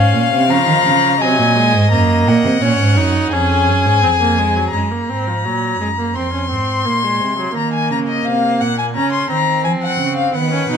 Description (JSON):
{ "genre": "classical, baroque-style fugue for string quartet", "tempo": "85 BPM", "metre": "4/4", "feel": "straight", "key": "F# major", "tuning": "A4 = 442 Hz", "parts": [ { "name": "warm violin", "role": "melody", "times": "0.0-10.8 s", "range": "D#5 to C6", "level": "-17 LUFS", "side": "left 5 dB", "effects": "none" }, { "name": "rich violin", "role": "second line", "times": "0.0-4.7, 10.4-10.8 s", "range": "G#4 to E#5", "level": "-21 LUFS", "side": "left 2 dB", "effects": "none" }, { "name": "rich viola", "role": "accompaniment", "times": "0.0-10.8 s", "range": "E#3 to D#4", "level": "-20 LUFS", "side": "right 3 dB", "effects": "none" }, { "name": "warm cello", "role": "bass", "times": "0.0-10.8 s", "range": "E#2 to E#3", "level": "-18 LUFS", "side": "right 3 dB", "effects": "none" } ], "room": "moderate stone room reverb, RT60 1.3 s", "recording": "none", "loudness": "-13 LUFS", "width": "side -7 dB against mid", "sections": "0.0-4.7 A section; 4.7-10.8 B section", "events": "none", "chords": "0.0 C#; 1.9 F#; 3.3 C#/E#; 4.7 F#; 6.2 Fm; 7.6 D#5; 9.0 C#" }